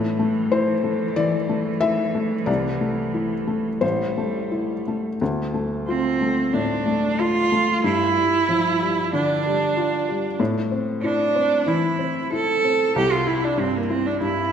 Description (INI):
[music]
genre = neoclassical piano and strings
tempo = 92 BPM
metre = 4/4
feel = rubato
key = D minor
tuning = A4 = 440 Hz
[part]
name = rich cello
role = second line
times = 0.0-14.5 s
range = E3 to A4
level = -22 LUFS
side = right 4 dB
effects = none
[part]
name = felt-muted upright piano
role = accompaniment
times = 0.0-14.5 s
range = A1 to E5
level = -22 LUFS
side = left 3 dB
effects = none
[sound]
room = wet scoring stage reverb, RT60 2.0 s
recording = recorded in a church or concert hall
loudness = -19 LUFS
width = side -8 dB against mid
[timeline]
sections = 0.0-5.2 A section; 5.2-14.5 B section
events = none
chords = 0.0 Am; 2.5 C6; 3.8 Am7; 5.2 Dm; 7.8 G5; 10.4 Am; 12.9 C